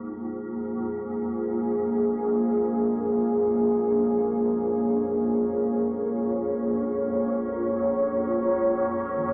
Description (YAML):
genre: dark ambient drone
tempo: free time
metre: none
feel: none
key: Bb minor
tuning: A4 = 441 Hz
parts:
  - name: dark analog pad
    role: sustained chords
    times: 0.0-9.3 s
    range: Bb3 to Db5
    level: -26 LUFS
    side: equal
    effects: chorus
  - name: gamelan-type bronze metallophone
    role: arpeggios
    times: 0.0-9.3 s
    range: Eb3 to Eb4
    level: -42 LUFS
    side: equal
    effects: none
  - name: swarming drone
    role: drone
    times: 0.0-9.3 s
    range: Bb1 to F2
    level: -36 LUFS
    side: equal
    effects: built-in reverb, analog chorus
room: wet plate reverb, RT60 2.8 s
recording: dreamy mix soaked in reverb, AM radio sound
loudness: -25 LUFS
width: mono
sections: 0.0-9.3 A section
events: none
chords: 0.0 Bbm7